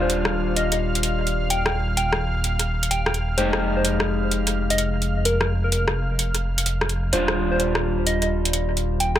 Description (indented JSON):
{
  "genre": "UK garage, two-step garage",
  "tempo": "128 BPM",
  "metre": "4/4",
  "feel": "swing 66% on 16ths",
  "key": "unclear",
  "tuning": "A4 = 440 Hz",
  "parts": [
    { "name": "soft struck synth lead", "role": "melody", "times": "0.0-9.2 s", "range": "Bb4 to G5", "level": "-27 LUFS", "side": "left 1 dB", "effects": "chorus, vintage 12-bit sampler grit, tape echo" },
    { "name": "warm analog pad", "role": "sustained chords", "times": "0.0-9.2 s", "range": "F5 to F6", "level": "-32 LUFS", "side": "right 1 dB", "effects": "chorus, tremolo" },
    { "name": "electric guitar at the edge of break-up", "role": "stabs", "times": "0.0-9.2 s", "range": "G3 to G4", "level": "-27 LUFS", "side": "left 1 dB", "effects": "tape echo" },
    { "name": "dark detuned saw bass", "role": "bass", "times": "0.0-9.2 s", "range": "Eb1 to F1", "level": "-24 LUFS", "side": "equal", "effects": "none" },
    { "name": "garage drum kit", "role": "drums", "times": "0.1-9.2 s", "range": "hi-hat, rim click", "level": "-25 LUFS", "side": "equal", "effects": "tape echo" }
  ],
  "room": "light reverb",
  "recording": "echo-heavy mix",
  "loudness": "-20 LUFS",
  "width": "side -11 dB against mid",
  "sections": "0.0-9.2 A section",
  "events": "none",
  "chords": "0.0 Ebmaj9; 3.4 Fm9; 7.1 Ebmaj9",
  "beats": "0.10 0.56 1.03 | 1.50 1.97 2.44 2.91 | 3.38 3.85 4.32 4.78 | 5.25 5.72 6.19 6.66 | 7.13 7.60 8.06 8.53 | 9.00"
}